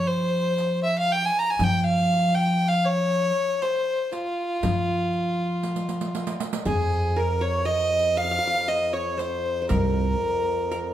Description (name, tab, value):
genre	Arabic maqam ensemble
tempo	118 BPM (eighths)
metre	10/8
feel	straight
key	F minor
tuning	A4 = 440 Hz
part	clear violin	melody	0.0-10.9 s	F4 to Bb5	-24 LUFS	equal	none
part	upright bass	bass	0.0-10.1 s	C2 to F3	-26 LUFS	equal	none
part	darbuka	percussion	0.6-10.9 s	none	-33 LUFS	left 4 dB	none
part	riq	percussion	0.6-10.9 s	none	-34 LUFS	right 5 dB	none
part	muted double bass	drone	6.6-10.9 s	F2	-34 LUFS	right 1 dB	none
part	qanun	second line	6.7-10.9 s	Ab4 to F5	-33 LUFS	right 2 dB	none
room	moderate large studio reverb, RT60 1.2 s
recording	band playing live in one room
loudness	-22 LUFS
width	side -11 dB against mid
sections	0.0-6.7 A section; 6.7-10.9 B section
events	drum fill 5.7-6.7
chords	none